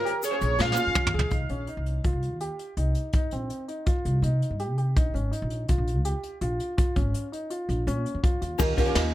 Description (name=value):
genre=progressive instrumental, band music in an uneven meter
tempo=165 BPM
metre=5/4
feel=straight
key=unclear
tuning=A4 = 445 Hz
part: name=lead with added fifth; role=melody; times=0.0-1.1 s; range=Bb4 to F5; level=-28 LUFS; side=right 1 dB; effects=chorus, phaser, digital delay
part: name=archtop guitar, miked and amplified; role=accompaniment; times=0.0-1.1, 8.6-9.1 s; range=Db4 to Db5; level=-29 LUFS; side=right 1 dB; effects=double-tracked left and right
part: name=warm baby grand piano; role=arpeggios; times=0.1-9.1 s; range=C4 to Ab4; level=-32 LUFS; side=equal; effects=digital delay
part: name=vintage brush drum kit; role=drums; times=0.1-9.0 s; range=hi-hat, kick drum, ride cymbal, snare drum, toms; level=-26 LUFS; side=equal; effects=none
part: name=egg shaker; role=percussion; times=0.2-1.0, 8.6-8.8 s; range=none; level=-37 LUFS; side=left 6 dB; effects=none
part: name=upright bass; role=bass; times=0.4-9.1 s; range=Ab1 to C3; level=-27 LUFS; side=equal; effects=none
room=light reverb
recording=none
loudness=-24 LUFS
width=side -14 dB against mid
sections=0.0-1.3 A section; 1.3-8.6 B section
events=analog synth lead solo 0.0-1.3; drum fill 0.6-1.3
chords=0.0 Bbm7; 1.3 Cm; 5.0 Bbm; 8.6 Eb7